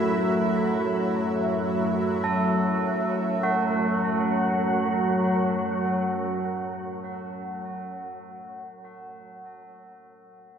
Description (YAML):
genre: dark ambient drone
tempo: free time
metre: none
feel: none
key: F# minor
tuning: A4 = 441 Hz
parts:
  - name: dark analog pad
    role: sustained chords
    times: 0.0-7.2 s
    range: A3 to C#5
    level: -28 LUFS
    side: equal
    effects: chorus
  - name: tubular bells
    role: arpeggios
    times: 0.0-10.6 s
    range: F#4 to A4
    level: -30 LUFS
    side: right 2 dB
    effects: ping-pong delay
  - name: organ-like drone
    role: drone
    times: 0.0-6.9 s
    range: F#2 to F#3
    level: -27 LUFS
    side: equal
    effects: ensemble chorus, built-in reverb
  - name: bubbling stepped-filter texture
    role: texture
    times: 0.0-3.5 s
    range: E4 to E5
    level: -32 LUFS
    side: right 2 dB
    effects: chorus, built-in reverb
room: wet huge ambient reverb, RT60 7.8 s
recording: none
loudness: -23 LUFS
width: side -7 dB against mid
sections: 0.0-3.4 A section; 3.4-8.2 B section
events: none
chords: 0.0 F#m